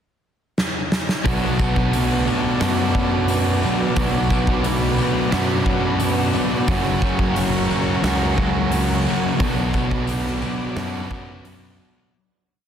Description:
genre	rock, shoegaze and dream pop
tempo	88 BPM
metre	4/4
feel	straight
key	B minor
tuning	A4 = 440 Hz
part	huge arena drum kit	drums	0.6-11.6 s	hi-hat, kick drum, snare drum	-24 LUFS	equal	none
part	biting overdriven guitar	riff	1.2-12.1 s	F#2 to F#4	-23 LUFS	right 7 dB	reverse reverb
part	thick fuzz guitar	riff	1.2-12.1 s	F#2 to B3	-24 LUFS	left 10 dB	distortion, wide subtle chorus
part	dark analog pad	sustained chords	1.9-12.1 s	F#4 to D6	-30 LUFS	equal	chorus
part	twelve-string electric guitar	arpeggios	1.3-12.1 s	F#3 to A#3	-32 LUFS	right 8 dB	none
part	modern bright picked electric bass	bass	1.3-11.8 s	F#1 to F#2	-24 LUFS	equal	none
part	tambourine	percussion	1.3-12.0 s	none	-40 LUFS	left 13 dB	none
room	light reverb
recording	dense, heavily limited modern master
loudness	-18 LUFS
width	side -8 dB against mid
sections	0.0-1.3 pickup bar; 1.3-12.1 A section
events	drum fill 0.6-1.3; fade-out 9.4-12.1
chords	0.0 N.C.; 1.3 Bm7; 6.7 F#; 9.4 Bm

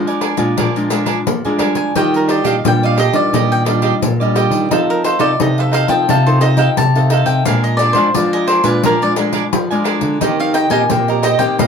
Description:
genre	samba and choro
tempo	87 BPM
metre	4/4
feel	straight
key	Eb major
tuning	A4 = 442 Hz
part	nylon-string guitar	accompaniment	0.0-11.7 s	Bb2 to A4	-20 LUFS	left 2 dB	none
part	nylon-string guitar	bass	0.0-11.7 s	Bb2 to Bb3	-18 LUFS	equal	none
part	cavaquinho	accompaniment	0.1-11.7 s	D4 to Ab5	-19 LUFS	right 4 dB	none
part	pandeiro	percussion	0.1-11.7 s	none	-21 LUFS	left 4 dB	none
part	cavaquinho	melody	1.8-11.7 s	Bb4 to A5	-17 LUFS	left 2 dB	none
room	wet small room reverb, RT60 0.5 s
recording	band playing live in one room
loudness	-12 LUFS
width	side -6 dB against mid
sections	0.0-11.7 A section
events	cavaquinho solo 0.0-11.7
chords	0.0 Bb7; 2.0 Ebmaj9; 4.7 F7; 7.5 Bb7; 10.2 Eb6

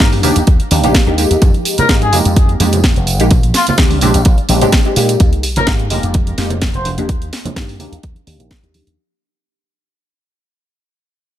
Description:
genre	filtered disco house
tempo	127 BPM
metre	4/4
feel	swing 54% on 16ths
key	F dorian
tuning	A4 = 440 Hz
part	muted trumpet section	melody	0.0-6.9 s	F4 to C5	-19 LUFS	left 3 dB	sidechain pumping, low-pass filter, digital delay
part	funky polysynth comp	accompaniment	0.0-9.0 s	Ab3 to G4	-17 LUFS	equal	chorus, phaser, sidechain pumping, low-pass filter
part	slap bass with an envelope filter	bass	0.0-9.0 s	F1 to Bb2	-17 LUFS	equal	tube saturation, sidechain pumping, low-pass filter
part	electronic kick drum	drums	0.0-8.6 s	none	-12 LUFS	equal	none
part	house drum kit	drums	0.0-9.0 s	hi-hat, snare drum	-19 LUFS	right 1 dB	sidechain pumping on hats
part	tambourine and congas	percussion	0.0-9.0 s	none	-21 LUFS	right 3 dB	sidechain pumping on perc, low-pass filter on perc
part	sub drop	sound effects	5.2-7.1 s	none	-23 LUFS	equal	none
room	little or no reverb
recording	none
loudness	-10 LUFS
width	side -12 dB against mid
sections	0.0-5.2 A section; 5.2-9.0 B section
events	drop 0.0-5.2; fade-out 5.2-9.0; impact 5.2-7.1; filter sweep on slap bass 5.2-9.0; filter sweep 5.2-9.0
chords	0.0 Ebmaj7; 1.4 Fm11; 3.3 Bb13; 5.2 Fm11; 6.9 Ebmaj7

